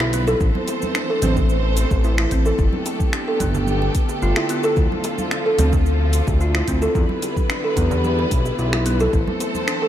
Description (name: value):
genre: organic downtempo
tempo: 110 BPM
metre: 4/4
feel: straight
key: D dorian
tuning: A4 = 440 Hz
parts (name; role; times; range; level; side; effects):
- warm studio string section; sustained chords; 0.0-9.9 s; D3 to C5; -25 LUFS; equal; sidechain pumping
- kalimba; arpeggios; 0.0-9.9 s; B3 to A4; -23 LUFS; equal; ping-pong delay
- smooth synth bass; bass; 0.0-9.2 s; G1 to E2; -20 LUFS; equal; none
- afro-pop drum kit; drums; 0.0-9.8 s; cabasa, finger snaps, hi-hat; -28 LUFS; equal; none
- bongos and congas; percussion; 0.0-9.7 s; none; -31 LUFS; right 3 dB; none
- electronic kick drum; drums; 0.4-9.2 s; none; -21 LUFS; equal; none
room: moderate plate reverb, RT60 2.9 s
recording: dreamy mix soaked in reverb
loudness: -17 LUFS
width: side -11 dB against mid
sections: 0.0-9.9 A section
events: none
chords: 0.4 Am; 2.6 Gadd9; 4.8 Dm; 7.0 Em7; 9.1 Am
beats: | 0.41 0.95 1.50 2.04 | 2.59 3.13 3.68 4.23 | 4.77 5.32 5.86 6.41 | 6.95 7.50 8.04 8.59 | 9.13 9.68